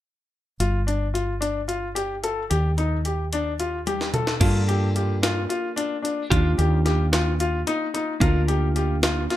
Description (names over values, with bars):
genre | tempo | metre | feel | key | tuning
progressive instrumental, band music in an uneven meter | 221 BPM (eighths) | 7/8 | straight | G minor | A4 = 440 Hz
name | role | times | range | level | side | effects
bright grand piano | arpeggios | 0.6-9.4 s | D4 to A4 | -26 LUFS | left 3 dB | tape echo, plate reverb
woody fretless electric bass | bass | 0.6-9.3 s | G1 to G2 | -23 LUFS | equal | none
jungle sampler-style drum kit | drums | 0.6-9.4 s | crash cymbal, hi-hat, kick drum, snare drum, toms | -26 LUFS | equal | none
vintage hollow-body jazz guitar | accompaniment | 4.4-9.4 s | Bb3 to Bb4 | -29 LUFS | right 2 dB | plate reverb
room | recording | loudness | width
light reverb | none | -21 LUFS | side -13 dB against mid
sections
0.6-4.4 A section; 4.4-9.4 B section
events
drum fill 3.9-4.4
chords
0.6 G5; 2.5 Eb; 4.4 Gm7; 6.3 Ebmaj7; 8.2 Bb/D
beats
| 0.60 0.87 1.14 1.42 1.69 1.96 2.23 | 2.50 2.77 3.05 3.32 3.59 3.86 4.13 | 4.41 4.68 4.95 5.22 5.49 5.76 6.04 | 6.31 6.58 6.85 7.12 7.39 7.67 7.94 | 8.21 8.48 8.76 9.03 9.30